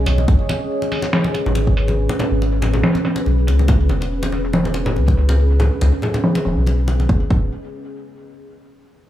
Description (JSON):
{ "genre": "deep dubstep", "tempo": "141 BPM", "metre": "4/4", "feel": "swing 54% on 16ths, half-time", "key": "C# minor", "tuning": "A4 = 440 Hz", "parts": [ { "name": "deep dark ambient pad", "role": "sustained chords", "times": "0.0-7.3 s", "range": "C#4 to D#5", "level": "-24 LUFS", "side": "equal", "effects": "chorus, built-in reverb" }, { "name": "soft dub sub bass", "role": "bass", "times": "0.0-7.5 s", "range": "C#1 to C#2", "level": "-17 LUFS", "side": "equal", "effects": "none" }, { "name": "trip hop sampler-style drum kit", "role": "drums", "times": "0.1-7.0 s", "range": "hi-hat, shaker, snare drum", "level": "-21 LUFS", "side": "equal", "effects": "low-pass filter on hats, small room ambience, low-pass filter on perc, low-pass filter on snare" }, { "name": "congas", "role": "percussion", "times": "0.1-7.1 s", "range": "none", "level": "-24 LUFS", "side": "left 1 dB", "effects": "dub echo" }, { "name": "electronic kick drum", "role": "drums", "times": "0.3-7.4 s", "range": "none", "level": "-16 LUFS", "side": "equal", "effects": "overdrive, small room ambience" } ], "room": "light reverb", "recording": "small room ambience", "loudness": "-15 LUFS", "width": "side -13 dB against mid", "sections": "0.0-7.1 A section; 7.1-8.8 B section", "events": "filter sweep on drum 0.0-7.1", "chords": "0.0 C#m; 7.1 C#5" }